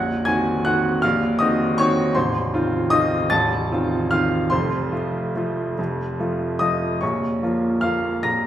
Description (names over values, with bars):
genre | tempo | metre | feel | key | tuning
classical, piano waltz | 136-171 BPM | 3/4 | rubato | unclear | A4 = 439 Hz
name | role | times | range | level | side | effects
clear baby grand piano | solo | 0.0-8.5 s | A0 to Bb6 | -19 LUFS | equal | none
room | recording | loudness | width
wet recital hall reverb, RT60 1.4 s | recorded in a church or concert hall | -19 LUFS | side -11 dB against mid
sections
0.0-8.5 A section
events
none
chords
0.0 Cm7b5/Bb; 2.2 F7/A; 4.5 F; 7.0 Bbm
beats
0.26 0.65 | 1.03 1.41 1.79 | 2.16 2.53 2.91 | 3.32 3.71 4.11 | 4.51 4.92 5.35 | 5.78 6.18 6.61 | 7.02 7.42 7.82 | 8.24